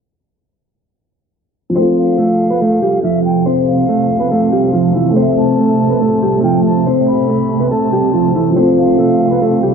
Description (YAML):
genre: hip hop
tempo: 141 BPM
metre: 4/4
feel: half-time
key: unclear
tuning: A4 = 440 Hz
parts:
  - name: dark grand piano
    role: accompaniment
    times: 1.7-9.7 s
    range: F3 to E5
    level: -18 LUFS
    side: equal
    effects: none
  - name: mellow electric guitar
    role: melody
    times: 1.8-9.7 s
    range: E3 to C5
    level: -14 LUFS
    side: equal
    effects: none
  - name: granular cloud pad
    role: sustained chords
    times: 2.6-9.7 s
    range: C3 to C4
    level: -16 LUFS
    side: right 2 dB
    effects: built-in reverb
  - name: breathy silver concert flute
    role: second line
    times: 2.0-9.7 s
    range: E5 to B5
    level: -21 LUFS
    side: left 1 dB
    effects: analog delay
room: moderate lush hall reverb, RT60 1.7 s, small room ambience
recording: dry, gritty hardware recording, low-pass filter, lossy compression artefacts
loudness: -11 LUFS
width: side -6 dB against mid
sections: 1.8-9.7 A section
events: none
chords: 1.8 Fmaj7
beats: | 1.76 2.18 2.61 3.03 | 3.46 3.88 4.31 4.73 | 5.16 5.58 6.01 6.44 | 6.86 7.29 7.71 8.14 | 8.56 8.99 9.41